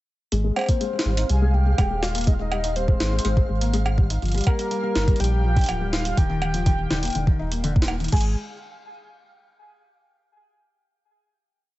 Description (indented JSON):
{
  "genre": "IDM",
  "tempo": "123 BPM",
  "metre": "4/4",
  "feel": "straight",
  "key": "Ab lydian",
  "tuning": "A4 = 443 Hz",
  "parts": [
    { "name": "felt-muted upright piano", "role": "arpeggios", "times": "0.3-8.4 s", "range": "D3 to Eb4", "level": "-29 LUFS", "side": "left 3 dB", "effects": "low-pass filter, dub echo" },
    { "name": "warm sub bass", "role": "bass", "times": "0.3-8.4 s", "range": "D1 to C2", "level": "-23 LUFS", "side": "equal", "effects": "none" },
    { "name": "jungle sampler-style drum kit", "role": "drums", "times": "0.3-8.2 s", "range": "cowbell, crash cymbal, hi-hat, snare drum", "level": "-29 LUFS", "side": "right 1 dB", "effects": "none" },
    { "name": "flickering grainy texture", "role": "texture", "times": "0.7-8.1 s", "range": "F5", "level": "-38 LUFS", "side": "right 4 dB", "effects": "built-in reverb, sidechain pumping" },
    { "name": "warm velvety synth lead", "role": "melody", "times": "0.6-8.4 s", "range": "Bb4 to Ab5", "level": "-30 LUFS", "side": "equal", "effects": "chorus, tremolo, digital delay" },
    { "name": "electronic kick drum", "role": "drums", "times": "0.7-8.2 s", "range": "none", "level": "-19 LUFS", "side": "equal", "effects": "overdrive" }
  ],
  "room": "digital ambience",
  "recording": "nothing above 8.0 kHz",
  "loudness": "-20 LUFS",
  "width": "side -17 dB against mid",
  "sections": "0.3-8.1 groove; 8.1-10.1 final chord",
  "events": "filter sweep on felt piano 0.3-8.1",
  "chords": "0.3 Ab; 4.2 Gm7; 6.2 Eb; 8.1 N.C.",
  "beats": "| 0.32 0.81 1.30 1.78 | 2.27 2.76 3.25 3.73 | 4.22 4.71 5.20 5.69 | 6.17 6.66 7.15 7.64 | 8.12"
}